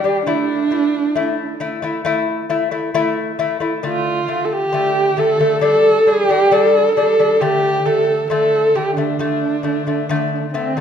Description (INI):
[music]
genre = mongolian traditional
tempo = 67 BPM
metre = 4/4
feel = straight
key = D minor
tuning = A4 = 440 Hz
[part]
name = warm horsehead fiddle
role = melody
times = 0.0-10.8 s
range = C4 to A4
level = -15 LUFS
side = right 2 dB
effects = none
[part]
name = lute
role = arpeggios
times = 0.0-10.8 s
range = D3 to E4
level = -19 LUFS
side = left 5 dB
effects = none
[sound]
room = wet recital hall reverb, RT60 1.4 s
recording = minimal, uncompressed stereo recording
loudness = -14 LUFS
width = side -8 dB against mid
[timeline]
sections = 0.0-10.8 A section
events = none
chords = 0.3 A5; 3.8 D5; 5.6 G5; 7.4 D5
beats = | 0.27 1.16 2.06 2.95 | 3.84 4.74 5.63 6.52 | 7.42 8.31 9.20 10.09